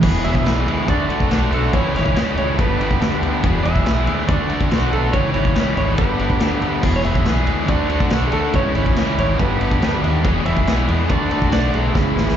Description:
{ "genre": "classic rock", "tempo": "141 BPM", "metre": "4/4", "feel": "straight", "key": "E mixolydian", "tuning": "A4 = 440 Hz", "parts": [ { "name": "distorted electric guitar", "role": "riff", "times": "0.0-12.4 s", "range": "E2 to G#4", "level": "-20 LUFS", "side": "equal", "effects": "distortion, slapback echo" }, { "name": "growling fingered electric bass", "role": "bass", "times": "0.0-12.3 s", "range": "E1 to E2", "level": "-21 LUFS", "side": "equal", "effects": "overdrive" }, { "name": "vintage drum kit", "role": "drums", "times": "0.0-12.4 s", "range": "crash cymbal, kick drum, ride cymbal, snare drum", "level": "-21 LUFS", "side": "equal", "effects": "none" }, { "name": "clean lap steel guitar", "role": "melody", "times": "0.2-12.4 s", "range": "G#4 to E5", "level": "-26 LUFS", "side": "right 3 dB", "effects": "slapback echo" } ], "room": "small room ambience", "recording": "live gig heard through the venue's PA, club reverb, nothing above 7.6 kHz", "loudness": "-16 LUFS", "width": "side -9 dB against mid", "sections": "0.0-12.4 A section", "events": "drum fill 11.9-12.4", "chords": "0.0 E; 0.9 D; 1.7 C#m; 2.6 G; 3.4 E; 4.3 D; 5.1 C#m; 6.0 G; 6.8 E; 7.7 D; 8.5 C#m; 9.4 G; 10.2 E; 11.1 D" }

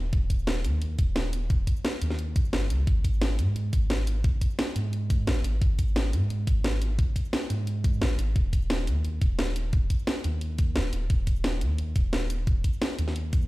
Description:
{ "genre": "liquid drum and bass", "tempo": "175 BPM", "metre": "4/4", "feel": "straight", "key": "unclear", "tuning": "A4 = 441 Hz", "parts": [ { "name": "sub bass with octave", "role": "bass", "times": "0.0-13.5 s", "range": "Eb1 to Ab2", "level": "-27 LUFS", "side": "equal", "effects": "none" }, { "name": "drum and bass drum kit", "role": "drums", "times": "0.1-13.5 s", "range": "hi-hat, shaker, snare drum", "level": "-31 LUFS", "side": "equal", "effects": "small room ambience" }, { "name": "electronic kick drum", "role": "drums", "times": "0.1-13.4 s", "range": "none", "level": "-24 LUFS", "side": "equal", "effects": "small room ambience" } ], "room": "digital ambience", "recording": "played on a big sound system in a bare room, large studio reverb", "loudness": "-24 LUFS", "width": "side -19 dB against mid", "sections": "0.0-13.5 A section", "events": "kick drops out 2.5-2.9", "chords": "none" }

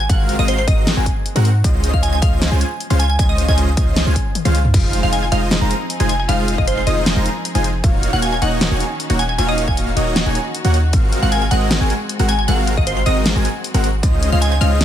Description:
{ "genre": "future bass", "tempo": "155 BPM", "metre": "4/4", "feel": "half-time", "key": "unclear", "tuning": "A4 = 440 Hz", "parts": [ { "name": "glassy wavetable pluck", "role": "melody", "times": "0.0-14.8 s", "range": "C5 to Ab5", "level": "-23 LUFS", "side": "equal", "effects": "chorus, sidechain pumping, digital delay" }, { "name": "warm 808-style bass", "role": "bass", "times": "0.0-14.8 s", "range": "Eb1 to Ab2", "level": "-18 LUFS", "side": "equal", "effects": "sidechain pumping" }, { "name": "airy dreamy lead", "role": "arpeggios", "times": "0.1-14.8 s", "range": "Eb5 to Bb5", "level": "-27 LUFS", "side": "equal", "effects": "chorus, sidechain pumping" }, { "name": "dense compressed supersaw", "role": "riff", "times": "0.1-14.8 s", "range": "Ab3 to Bb5", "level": "-22 LUFS", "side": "equal", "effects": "sidechain pumping, dub echo" }, { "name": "big-room dance drum kit", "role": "drums", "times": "0.1-14.8 s", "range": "crash cymbal, hi-hat, snare drum, toms", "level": "-22 LUFS", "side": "left 1 dB", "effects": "none" }, { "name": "electronic kick drum", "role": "drums", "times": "0.1-14.1 s", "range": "none", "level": "-18 LUFS", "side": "equal", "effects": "none" }, { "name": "clear symphonic string section", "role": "sustained chords", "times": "4.7-14.8 s", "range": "Db3 to Ab4", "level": "-29 LUFS", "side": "left 2 dB", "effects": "sidechain pumping" } ], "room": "digital ambience", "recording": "none", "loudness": "-14 LUFS", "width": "side -11 dB against mid", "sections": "0.0-4.7 A section; 4.7-14.8 A section", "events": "drop 0.0-4.7, 4.7-14.8; drum fill 4.4-4.7", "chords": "0.0 Ab13; 1.6 Dbmaj9; 4.7 Fm7; 7.8 Ebm9; 10.9 Ab13; 14.0 Dbmaj9" }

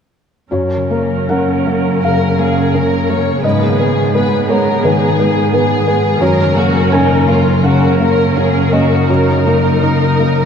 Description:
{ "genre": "cinematic, emotional film score for orchestra", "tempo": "84 BPM", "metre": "4/4", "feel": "rubato", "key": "F# major", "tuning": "A4 = 438 Hz", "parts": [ { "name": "felt-muted upright piano", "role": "accompaniment", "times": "0.5-10.5 s", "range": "F#2 to G#5", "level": "-15 LUFS", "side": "equal", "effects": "none" }, { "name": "warm studio viola section", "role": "accompaniment", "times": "0.5-10.5 s", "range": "B3 to A#4", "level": "-18 LUFS", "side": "right 3 dB", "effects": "none" }, { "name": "concert harp", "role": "arpeggios", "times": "0.5-10.5 s", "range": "F#2 to D#4", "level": "-18 LUFS", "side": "left 4 dB", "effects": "none" }, { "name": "rich studio cello section", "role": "bass", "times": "0.5-10.5 s", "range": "F#2 to G#2", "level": "-19 LUFS", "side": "right 3 dB", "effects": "none" }, { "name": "clear studio violin section", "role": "second line", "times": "2.0-10.5 s", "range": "D#4 to C#5", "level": "-19 LUFS", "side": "left 4 dB", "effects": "none" } ], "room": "wet cathedral reverb, RT60 6.0 s", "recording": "dark, warm production", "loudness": "-11 LUFS", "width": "side -7 dB against mid", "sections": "0.5-10.5 A section", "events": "none", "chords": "0.5 F#; 3.4 G#m; 6.2 F#; 9.1 D#m7/F#" }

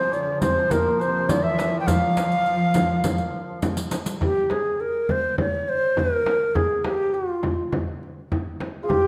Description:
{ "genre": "Persian modal ensemble", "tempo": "103 BPM", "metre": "4/4", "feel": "straight", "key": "F avaz esfahan", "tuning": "A4 = 440 Hz", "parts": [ { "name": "reedy ney", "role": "melody", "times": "0.0-9.1 s", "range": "F4 to G5", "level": "-25 LUFS", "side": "equal", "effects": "slapback echo" }, { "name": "dark symphonic cello section", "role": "second line", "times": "0.0-3.6 s", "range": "Bb2 to F3", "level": "-29 LUFS", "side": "equal", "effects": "none" }, { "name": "santur", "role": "second line", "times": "0.0-4.1, 8.8-9.1 s", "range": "F4 to F5", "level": "-33 LUFS", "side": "equal", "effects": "none" }, { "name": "warm duduk", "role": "drone", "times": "0.0-4.3 s", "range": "F3", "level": "-33 LUFS", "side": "equal", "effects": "none" }, { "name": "riq", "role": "percussion", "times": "0.1-4.2 s", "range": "none", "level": "-37 LUFS", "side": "equal", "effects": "none" }, { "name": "tombak", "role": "percussion", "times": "0.1-9.0 s", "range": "none", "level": "-32 LUFS", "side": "equal", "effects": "none" }, { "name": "frame drum", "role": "percussion", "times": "0.4-9.0 s", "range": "none", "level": "-31 LUFS", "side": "equal", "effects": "none" } ], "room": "wet recital hall reverb, RT60 1.6 s", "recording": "none", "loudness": "-23 LUFS", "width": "mono", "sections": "0.0-4.2 A section; 4.2-9.1 B section", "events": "drum fill 3.6-4.2", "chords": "none" }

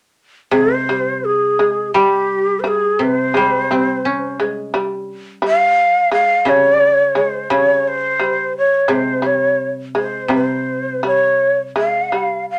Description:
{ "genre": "japanese traditional, Japanese chamber music", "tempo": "85 BPM", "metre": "4/4", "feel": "rubato", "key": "C miyako bushi", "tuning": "A4 = 440 Hz", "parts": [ { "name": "breathy shakuhachi", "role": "melody", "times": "0.5-12.6 s", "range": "G4 to F5", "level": "-18 LUFS", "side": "equal", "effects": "none" }, { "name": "shamisen", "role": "second line", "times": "0.5-12.6 s", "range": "G3 to Ab3", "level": "-24 LUFS", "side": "equal", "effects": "none" }, { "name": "koto", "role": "accompaniment", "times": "0.5-12.5 s", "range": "C3 to Db4", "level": "-22 LUFS", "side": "equal", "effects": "none" } ], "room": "moderate small room ambience, RT60 0.5 s", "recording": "none", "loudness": "-16 LUFS", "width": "mono", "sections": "0.5-12.6 A section", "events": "none", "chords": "none" }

